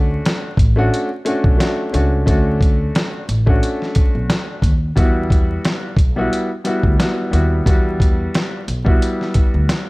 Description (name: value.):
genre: hip hop, boom-bap hip-hop.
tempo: 89 BPM.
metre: 4/4.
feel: swing 56% on 16ths.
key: E dorian.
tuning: A4 = 435 Hz.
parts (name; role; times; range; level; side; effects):
warm upright piano; accompaniment; 0.0-9.9 s; G3 to F#4; -20 LUFS; left 1 dB; cassette tape, high-pass filter, low-pass filter.
upright bass; bass; 0.0-9.7 s; A1 to E2; -19 LUFS; equal; none.
dusty soul sampler-style drum kit; drums; 0.3-9.9 s; hi-hat, kick drum, snare drum; -16 LUFS; equal; none.
room: little or no reverb.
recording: vinyl crackle.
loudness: -14 LUFS.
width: side -23 dB against mid.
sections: 0.0-9.9 A section.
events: none.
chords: 0.0 Bm7 (rootless); 5.0 Emadd9.